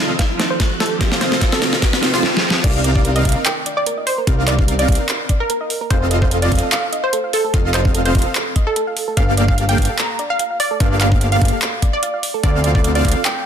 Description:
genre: future bass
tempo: 147 BPM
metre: 4/4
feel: swing 54% on 16ths, half-time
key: C dorian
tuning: A4 = 440 Hz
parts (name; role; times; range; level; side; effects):
- wide unison pluck; melody; 0.0-13.5 s; F4 to Bb5; -22 LUFS; right 1 dB; cassette tape, sidechain pumping, digital delay
- glassy digital keys; accompaniment; 0.0-2.7 s; F3 to A4; -27 LUFS; right 4 dB; chorus, sidechain pumping, ping-pong delay
- ethereal airy pad; sustained chords; 0.0-2.2 s; Eb3 to F4; -33 LUFS; equal; none
- dense compressed supersaw; riff; 0.0-13.2 s; Bb3 to A5; -23 LUFS; equal; sidechain pumping, ping-pong delay
- riser and swell; sound effects; 0.2-2.6 s; none; -26 LUFS; left 2 dB; none
- dubstep drum kit; drums; 0.2-13.3 s; crash cymbal, handclaps, hi-hat, snare drum; -20 LUFS; equal; none
- electronic kick drum; drums; 0.2-13.1 s; none; -17 LUFS; equal; none
- airy dreamy lead; arpeggios; 2.6-13.2 s; F5; -28 LUFS; right 1 dB; chorus, vintage 12-bit sampler grit, sidechain pumping, ping-pong delay
- soft round pluck; arpeggios; 2.6-13.3 s; A4 to F5; -28 LUFS; right 4 dB; chorus, sidechain pumping, ping-pong delay
- fat analog bass; bass; 2.6-13.2 s; F1 to D2; -18 LUFS; equal; sidechain pumping
room: light reverb, digital ambience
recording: dense, heavily limited modern master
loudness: -14 LUFS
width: side -8 dB against mid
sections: 0.0-2.6 A section; 2.6-13.5 B section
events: build-up 0.0-2.6; drum fill 0.0-2.2, 2.2-2.6; filter sweep on synth pluck 0.0-2.6; riser 0.2-2.2; swell 1.8-2.6; drop 2.6-13.5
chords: 0.0 F7; 2.6 Cm11; 5.9 F7; 9.2 Gm9; 12.4 Dm7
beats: 0.19 0.60 | 1.01 1.42 1.82 2.23 | 2.64 3.05 3.46 3.87 | 4.27 4.68 5.09 5.50 | 5.91 6.31 6.72 7.13 | 7.54 7.95 8.35 8.76 | 9.17 9.58 9.99 10.39 | 10.80 11.21 11.62 12.03 | 12.44 12.84 13.25

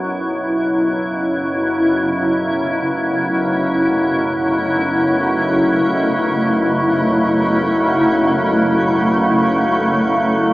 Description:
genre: dark ambient drone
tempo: free time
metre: none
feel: none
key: unclear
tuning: A4 = 441 Hz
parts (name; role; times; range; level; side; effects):
- granular cloud pad; sustained chords; 0.0-10.5 s; C#3 to E4; -16 LUFS; equal; built-in reverb
- organ-like drone; drone; 0.0-10.5 s; B1 to F#2; -19 LUFS; equal; ensemble chorus, built-in reverb
room: wet cathedral reverb, RT60 5.5 s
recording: small speaker sound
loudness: -14 LUFS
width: side -18 dB against mid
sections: 0.0-10.5 A section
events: fade-in on ambient pad 0.0-10.5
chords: 0.0 A/B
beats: free time

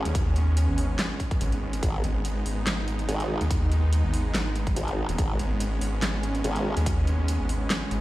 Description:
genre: heavy wobble dubstep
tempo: 143 BPM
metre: 4/4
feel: swing 54% on 16ths, half-time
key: G# minor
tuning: A4 = 440 Hz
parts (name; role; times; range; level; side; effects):
- supersaw pad; sustained chords; 0.0-8.0 s; G#3 to D#4; -32 LUFS; right 1 dB; sidechain pumping
- formant-sweep wobble bass; bass; 0.0-6.7 s; G#1; -27 LUFS; equal; chorus, overdrive
- snarling distorted saw bass; bass; 0.1-8.0 s; D#1 to D#2; -25 LUFS; equal; distortion, overdrive
- dubstep drum kit; drums; 0.1-8.0 s; handclaps, hi-hat, snare drum; -31 LUFS; equal; none
- electronic kick drum; drums; 0.1-7.0 s; none; -27 LUFS; equal; none
room: little or no reverb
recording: played on a big sound system in a bare room, large studio reverb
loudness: -24 LUFS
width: side -16 dB against mid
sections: 0.0-8.0 A section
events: none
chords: 0.0 G#m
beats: | 0.15 0.57 0.99 1.41 | 1.83 2.25 2.67 3.09 | 3.51 3.92 4.34 4.76 | 5.18 5.60 6.02 6.44 | 6.86 7.28 7.70

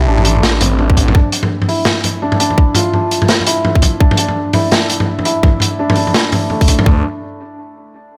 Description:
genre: half-time drum and bass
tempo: 168 BPM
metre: 4/4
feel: swing 60% on 16ths, half-time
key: unclear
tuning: A4 = 439 Hz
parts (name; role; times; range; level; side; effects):
- felt-muted upright piano; arpeggios; 0.0-7.0 s; A3 to G4; -20 LUFS; equal; low-pass filter, tape echo
- phased detuned saw bass; bass; 0.0-1.1, 6.9-7.0 s; A1 to D2; -16 LUFS; equal; phaser
- crunchy breakbeat drum kit; drums; 0.2-6.8 s; hi-hat, snare drum, toms; -17 LUFS; equal; none
- electronic kick drum; drums; 0.9-6.9 s; none; -12 LUFS; equal; none
room: light reverb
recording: none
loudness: -13 LUFS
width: mono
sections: 0.0-6.9 A section; 6.9-8.2 B section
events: none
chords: 0.0 C6; 1.1 Dm; 4.0 Asus4; 6.9 N.C.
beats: 0.07 0.43 0.79 | 1.15 1.50 1.86 2.22 | 2.58 2.93 3.29 3.65 | 4.00 4.36 4.72 5.08 | 5.43 5.79 6.15 6.50 | 6.86

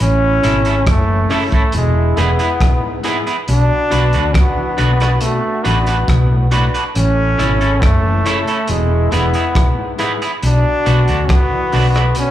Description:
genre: roots reggae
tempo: 69 BPM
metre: 4/4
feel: straight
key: B dorian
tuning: A4 = 440 Hz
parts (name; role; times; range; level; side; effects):
- brilliant trombone; melody; 0.0-12.3 s; G#3 to D4; -19 LUFS; equal; dub echo, slapback echo
- clear trombone section; second line; 0.0-12.3 s; D3 to A4; -26 LUFS; equal; dub echo, slapback echo
- hollow-body short-scale fingered electric bass; bass; 0.0-12.1 s; E1 to D2; -15 LUFS; equal; none
- electric guitar at the edge of break-up; accompaniment; 0.4-12.0 s; B3 to B4; -22 LUFS; right 4 dB; dub echo, slapback echo
- overdriven clav; arpeggios; 0.4-12.3 s; G#2 to E3; -26 LUFS; left 4 dB; slapback echo
- bright concert grand piano; stabs; 0.4-11.9 s; B3 to C#5; -27 LUFS; left 6 dB; slapback echo
- crunchy breakbeat drum kit; drums; 0.4-12.3 s; hi-hat, kick drum, rim click; -19 LUFS; equal; none
room: small room ambience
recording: live gig heard through the venue's PA, club reverb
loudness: -12 LUFS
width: side -12 dB against mid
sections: 0.0-12.3 A section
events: none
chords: 0.0 A; 1.7 E; 3.5 Bm; 6.9 A; 8.7 E; 10.4 Bm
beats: | 0.00 0.86 1.73 2.60 | 3.47 4.34 5.21 6.08 | 6.95 7.82 8.69 9.55 | 10.42 11.29 12.16

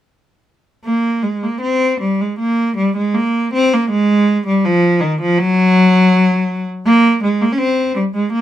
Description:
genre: classical, baroque-style suite movement for unaccompanied cello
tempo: 80 BPM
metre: 4/4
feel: rubato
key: unclear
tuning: A4 = 439 Hz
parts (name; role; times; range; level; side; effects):
- rich cello; solo; 0.8-8.4 s; Eb3 to Db4; -12 LUFS; equal; none
room: light reverb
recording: none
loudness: -12 LUFS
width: side -12 dB against mid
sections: 0.8-8.4 A section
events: none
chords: none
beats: | 0.85 1.61 2.38 3.15 | 3.90 4.63 5.37 6.12 | 6.85 7.58 8.34

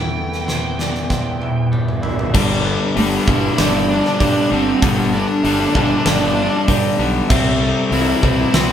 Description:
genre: post-rock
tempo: 97 BPM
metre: 4/4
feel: straight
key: G major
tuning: A4 = 439 Hz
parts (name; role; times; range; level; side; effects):
- smooth overdriven lead guitar; melody; 0.0-8.7 s; B3 to G5; -22 LUFS; right 2 dB; none
- pedal steel guitar; sustained chords; 0.0-8.7 s; G3 to E5; -31 LUFS; right 1 dB; none
- twelve-string electric guitar; arpeggios; 0.0-8.7 s; E2 to G4; -27 LUFS; equal; none
- vibraphone with medium hard mallets; arpeggios; 0.0-8.7 s; A4 to C6; -27 LUFS; right 5 dB; none
- fuzz fingered electric bass; bass; 0.0-8.7 s; G1 to G2; -24 LUFS; right 1 dB; overdrive
- huge arena drum kit; drums; 0.3-8.7 s; crash cymbal, hi-hat, kick drum, snare drum, toms; -19 LUFS; equal; none
- overdriven electric guitar; riff; 2.3-8.7 s; G2 to C4; -18 LUFS; left 3 dB; spring reverb
room: moderate studio reverb, RT60 0.8 s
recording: band playing live in one room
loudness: -14 LUFS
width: side -9 dB against mid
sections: 0.0-2.3 A section; 2.3-8.7 B section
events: drum fill 1.1-2.3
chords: 0.0 Cmaj7/E; 2.3 G; 7.3 Cmaj7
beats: 0.48 1.10 1.72 | 2.34 2.96 3.58 4.21 | 4.82 5.44 6.06 6.68 | 7.30 7.92 8.54

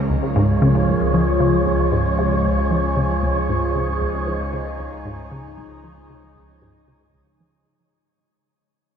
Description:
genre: ambient, sequencer-driven space music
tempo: 115 BPM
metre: 4/4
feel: straight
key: Db major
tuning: A4 = 438 Hz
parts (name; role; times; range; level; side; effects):
- phased analog pad; sustained chords; 0.0-7.7 s; Db3 to Bb4; -22 LUFS; right 1 dB; phaser, chorus, shimmer reverb
- resonant blip pluck; riff; 0.0-7.6 s; Db2 to F3; -22 LUFS; left 1 dB; phaser, tape echo
- warm sub bass; bass; 0.0-7.6 s; Db2; -25 LUFS; equal; none
- wind-like tuned noise texture; texture; 0.0-7.7 s; Db5; -25 LUFS; right 1 dB; built-in reverb, shimmer reverb
room: wet huge ambient reverb, RT60 7.4 s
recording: none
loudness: -17 LUFS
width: side -8 dB against mid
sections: 0.0-7.7 A section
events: fade-out 0.0-7.7; filter sweep on synth arpeggio sound 0.0-7.7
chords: 0.0 Db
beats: 0.36 0.88 | 1.40 1.92 2.45 2.97 | 3.49 4.01 4.53 5.05 | 5.58 6.10 6.62 7.14

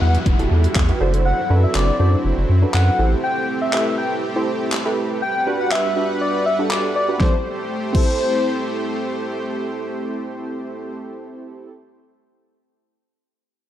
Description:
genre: dance-pop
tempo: 121 BPM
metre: 4/4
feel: straight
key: A dorian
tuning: A4 = 437 Hz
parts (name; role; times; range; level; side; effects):
- airy dreamy lead; melody; 0.0-8.7 s; C5 to G5; -22 LUFS; left 2 dB; chorus, sidechain pumping, digital delay
- warm analog keys; accompaniment; 0.0-11.7 s; C4 to C5; -24 LUFS; right 2 dB; chorus, sidechain pumping
- supersaw pad; sustained chords; 0.0-11.0 s; F#3 to F#5; -27 LUFS; right 1 dB; sidechain pumping
- saturated sub bass; bass; 0.0-3.1 s; E1 to F#2; -16 LUFS; equal; sidechain pumping
- downlifter; sound effects; 0.0-3.2 s; none; -31 LUFS; equal; none
- pop drum kit; drums; 0.1-8.1 s; crash cymbal, handclaps, hi-hat, kick drum, snare drum; -21 LUFS; equal; overdrive
room: light reverb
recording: dark, warm production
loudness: -17 LUFS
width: side -11 dB against mid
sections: 0.0-7.2 A section; 7.2-11.2 B section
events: none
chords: 0.0 Emadd9; 1.0 D7/F#; 3.0 Am7; 5.2 Gmaj7; 7.2 Am7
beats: 0.26 0.76 | 1.25 1.75 2.25 2.74 | 3.24 3.73 4.23 4.72 | 5.22 5.72 6.21 6.71 | 7.20 7.70 8.20 8.69 | 9.19 9.68 10.18 10.68

